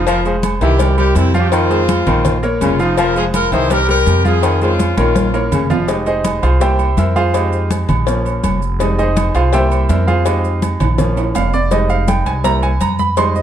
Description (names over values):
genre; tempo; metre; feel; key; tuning
latin, salsa; 165 BPM; 4/4; straight; F minor; A4 = 440 Hz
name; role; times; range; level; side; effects
brilliant horn section; melody; 0.0-5.5 s; C4 to C5; -18 LUFS; left 1 dB; none
bright grand piano; accompaniment; 0.0-13.4 s; E3 to C6; -18 LUFS; right 2 dB; none
upright bass; bass; 0.0-13.4 s; F1 to F2; -17 LUFS; equal; none
breathy baritone saxophone; second line; 0.1-5.7 s; C3 to F3; -21 LUFS; left 5 dB; none
agogo bells and timbales; percussion; 0.1-13.4 s; none; -24 LUFS; right 11 dB; none
congas; percussion; 0.1-13.4 s; none; -21 LUFS; left 1 dB; none
cowbell; percussion; 0.1-13.4 s; none; -25 LUFS; left 8 dB; none
maracas; percussion; 0.1-13.4 s; none; -36 LUFS; right 9 dB; none
room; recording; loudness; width
light reverb; dark, warm production; -12 LUFS; side -10 dB against mid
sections
0.0-5.9 A section; 5.9-13.4 B section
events
drum fill 5.0-5.9, 10.8-11.7; grand piano solo 5.9-13.4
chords
0.1 Fm7; 0.8 C7; 1.5 Fm7; 2.2 Bbm; 3.0 Fm7; 3.7 C5; 4.4 Fm7; 5.2 Bbm; 5.9 Fm7; 6.6 C7; 7.3 Fm7; 8.1 Bbm; 8.8 Fm7; 9.5 C7; 10.3 Fm7; 11.0 Bbm; 11.7 Fm7; 12.4 C7